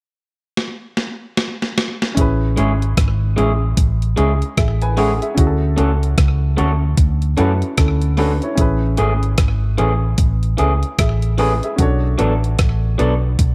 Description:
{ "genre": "lovers rock reggae", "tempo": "75 BPM", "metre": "4/4", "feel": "swing 62% on 16ths", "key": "A major", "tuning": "A4 = 441 Hz", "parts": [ { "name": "gated 80s digital drum machine", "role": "drums", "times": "0.6-13.5 s", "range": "hi-hat, kick drum, rim click, snare drum", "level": "-20 LUFS", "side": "equal", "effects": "gated reverb, gated reverb snare, slapback echo" }, { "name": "warm baby grand piano", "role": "accompaniment", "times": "2.1-13.5 s", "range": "C#4 to G#5", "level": "-26 LUFS", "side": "equal", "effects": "none" }, { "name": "vintage muted fingered electric bass", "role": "bass", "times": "2.2-13.5 s", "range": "G#1 to F#2", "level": "-20 LUFS", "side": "equal", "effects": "none" }, { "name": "electric guitar through a small old amp", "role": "stabs", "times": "2.6-13.1 s", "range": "E3 to A4", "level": "-24 LUFS", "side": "equal", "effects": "spring reverb" } ], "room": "digital ambience", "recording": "dry, close 1970s-style studio recording", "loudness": "-17 LUFS", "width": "mono", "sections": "0.0-2.2 A section; 2.2-13.5 B section", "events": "drum fill 0.6-2.2", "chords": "0.0 N.C.; 2.2 Amaj7; 5.4 Dmaj7; 8.6 Amaj7; 11.8 Bm7" }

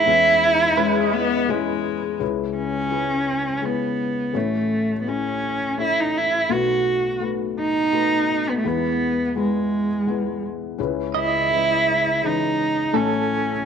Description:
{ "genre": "acoustic folk-pop ballad", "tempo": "84 BPM", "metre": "3/4", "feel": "straight", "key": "E major", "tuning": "A4 = 440 Hz", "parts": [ { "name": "warm cello", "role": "melody", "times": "0.0-13.7 s", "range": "G#3 to F#4", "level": "-20 LUFS", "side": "right 2 dB", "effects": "none" }, { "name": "felt-muted upright piano", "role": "accompaniment", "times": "0.0-13.7 s", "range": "A1 to C#5", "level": "-26 LUFS", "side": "left 9 dB", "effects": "none" }, { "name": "clear viola", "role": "second line", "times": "0.8-2.2 s", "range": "G#3 to B3", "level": "-24 LUFS", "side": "left 9 dB", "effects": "none" }, { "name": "electric guitar at the edge of break-up", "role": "arpeggios", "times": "0.8-2.7, 11.1-13.7 s", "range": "A4 to D#5", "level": "-27 LUFS", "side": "right 9 dB", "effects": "tremolo" } ], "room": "wet spring reverb, RT60 1.1 s, small room ambience", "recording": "1960s-style stereo with parts hard left and right", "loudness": "-19 LUFS", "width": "side -7 dB against mid", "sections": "0.0-2.2 A section; 2.2-13.7 B section", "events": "none", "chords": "0.1 E6; 2.2 C#m7; 4.4 A; 6.5 B7; 8.6 E; 10.8 C#m7; 12.9 A" }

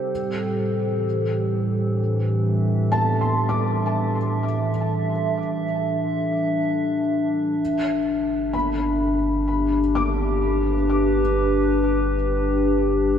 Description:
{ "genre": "ambient", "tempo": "64 BPM", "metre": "4/4", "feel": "straight", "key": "G major", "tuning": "A4 = 438 Hz", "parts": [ { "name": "warbly tape-like pad", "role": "sustained chords", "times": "0.0-13.2 s", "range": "A2 to E5", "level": "-21 LUFS", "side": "left 1 dB", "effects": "chorus, built-in reverb" }, { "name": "felt-muted upright piano", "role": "arpeggios", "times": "0.0-13.2 s", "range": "A5 to D6", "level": "-29 LUFS", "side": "left 1 dB", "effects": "ensemble chorus, ping-pong delay" }, { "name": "analog drone", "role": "drone", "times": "0.0-13.2 s", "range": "G3 to G4", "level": "-32 LUFS", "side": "right 2 dB", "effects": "chorus" }, { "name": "warm sub bass", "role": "bass", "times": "7.6-13.2 s", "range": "G1", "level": "-26 LUFS", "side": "equal", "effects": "none" } ], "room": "wet cathedral reverb, RT60 5.2 s", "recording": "dreamy mix soaked in reverb", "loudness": "-20 LUFS", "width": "side -8 dB against mid", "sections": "0.0-7.6 A section; 7.6-13.2 B section", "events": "filter sweep on ambient pad 0.0-7.6", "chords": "0.1 Asus4; 7.6 G" }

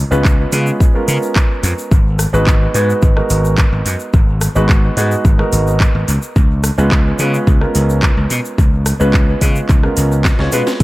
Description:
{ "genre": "nu-disco, nu disco", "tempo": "108 BPM", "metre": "4/4", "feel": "straight", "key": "unclear", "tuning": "A4 = 440 Hz", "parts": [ { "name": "warm grand piano", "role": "accompaniment", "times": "0.0-10.7 s", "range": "G#3 to C#5", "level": "-18 LUFS", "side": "right 1 dB", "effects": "sidechain pumping, dub echo" }, { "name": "gritty slap bass", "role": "bass", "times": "0.0-10.8 s", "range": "G#1 to C#3", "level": "-16 LUFS", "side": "equal", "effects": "overdrive, sidechain pumping" }, { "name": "tube shaker", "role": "percussion", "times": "0.1-10.8 s", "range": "none", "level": "-28 LUFS", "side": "left 3 dB", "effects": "none" }, { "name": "electronic kick drum", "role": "drums", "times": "0.2-10.8 s", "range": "none", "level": "-12 LUFS", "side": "equal", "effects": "none" }, { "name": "house drum kit", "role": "drums", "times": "0.2-10.8 s", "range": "handclaps, hi-hat, rim click, shaker, snare drum", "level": "-23 LUFS", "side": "right 1 dB", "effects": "dub echo" } ], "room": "light reverb", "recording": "echo-heavy mix", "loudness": "-11 LUFS", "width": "side -18 dB against mid", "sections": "0.0-10.8 A section", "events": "drum fill 10.2-10.8", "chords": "0.0 C#7; 1.9 G#m7; 6.1 C#7" }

